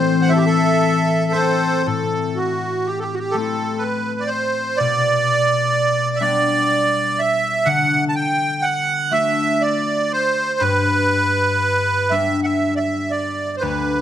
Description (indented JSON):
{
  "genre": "celtic folk, Celtic slow air",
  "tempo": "41 BPM (dotted quarters)",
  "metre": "6/8",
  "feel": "uneven beats, rubato",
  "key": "A dorian",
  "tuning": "A4 = 440 Hz",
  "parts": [
    { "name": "accordion", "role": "melody", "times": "0.0-14.0 s", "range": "F#4 to A5", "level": "-18 LUFS", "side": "right 2 dB", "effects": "light tremolo tuning" },
    { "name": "concert harp", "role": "accompaniment", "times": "0.0-14.0 s", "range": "D2 to F#4", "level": "-22 LUFS", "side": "left 4 dB", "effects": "none" },
    { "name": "warbly tape-like pad", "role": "sustained chords", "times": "0.0-1.8 s", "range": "E3 to A4", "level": "-24 LUFS", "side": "left 6 dB", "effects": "chorus, built-in reverb" }
  ],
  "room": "moderate recital hall reverb, RT60 1.6 s",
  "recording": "none",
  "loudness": "-16 LUFS",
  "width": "side -10 dB against mid",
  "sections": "0.0-1.9 A section; 1.9-14.0 B section",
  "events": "none",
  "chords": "0.0 Am; 4.8 G/B; 7.7 D; 10.6 G"
}